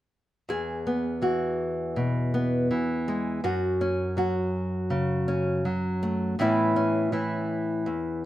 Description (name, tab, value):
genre	folk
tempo	81 BPM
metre	4/4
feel	straight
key	E major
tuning	A4 = 438 Hz
part	nylon-string guitar	accompaniment	0.5-8.3 s	E2 to G#4	-24 LUFS	equal	none
room	moderate studio reverb, RT60 0.9 s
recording	dark, warm production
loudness	-24 LUFS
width	side -14 dB against mid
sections	0.5-8.3 A section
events	none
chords	0.5 E; 3.4 F#5; 6.4 Aadd9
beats	| 0.48 1.22 1.96 2.69 | 3.43 4.17 4.91 5.65 | 6.38 7.12 7.86